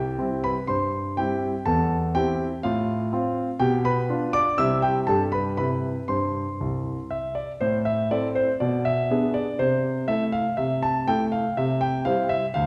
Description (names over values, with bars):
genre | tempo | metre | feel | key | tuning
classical-period piano sonatina | 121 BPM | 4/4 | straight | C major, A minor from 7.6 s | A4 = 439 Hz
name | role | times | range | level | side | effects
warm grand piano | solo | 0.0-12.7 s | C2 to E6 | -24 LUFS | equal | none
room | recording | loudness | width
wet recital hall reverb, RT60 1.4 s | heard from further back in the room | -24 LUFS | mono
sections
0.0-7.6 A section; 7.6-12.7 B section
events
none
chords
0.0 C; 1.7 C/E; 2.6 F/A; 3.6 G7/B; 4.6 C; 5.1 G; 5.6 C; 7.6 Am; 8.6 G#dim/B; 9.6 Am/C; 11.6 C